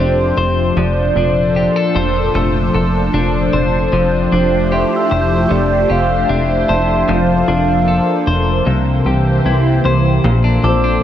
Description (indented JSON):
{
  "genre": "dream pop",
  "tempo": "76 BPM",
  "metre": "4/4",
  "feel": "straight",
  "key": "F major",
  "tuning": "A4 = 441 Hz",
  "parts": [
    { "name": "soft octave-layered synth lead", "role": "melody", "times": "0.0-11.0 s", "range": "C5 to F5", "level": "-19 LUFS", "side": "right 1 dB", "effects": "chorus, phaser, tape echo" },
    { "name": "phased analog pad", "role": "sustained chords", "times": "0.0-11.0 s", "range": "Bb2 to C5", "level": "-18 LUFS", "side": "equal", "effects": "phaser, chorus" },
    { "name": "clean electric guitar", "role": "arpeggios", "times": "0.0-11.0 s", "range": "Bb2 to C5", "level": "-18 LUFS", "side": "left 3 dB", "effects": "analog chorus, tape echo" },
    { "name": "plucky analog bass", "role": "bass", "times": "0.0-11.0 s", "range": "F1 to C2", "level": "-17 LUFS", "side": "equal", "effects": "none" },
    { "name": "glockenspiel with rubber mallets", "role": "texture", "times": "4.7-11.0 s", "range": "A5 to G6", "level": "-26 LUFS", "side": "right 3 dB", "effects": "tape echo" }
  ],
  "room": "moderate huge ambient reverb, RT60 8.5 s",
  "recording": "none",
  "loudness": "-12 LUFS",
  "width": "side -10 dB against mid",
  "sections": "0.0-10.2 A section",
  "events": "none",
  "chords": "0.0 F69; 0.8 Bbmaj9/F; 3.9 F69; 7.1 Bbmaj9/F; 8.7 C7; 10.2 Bbmaj7"
}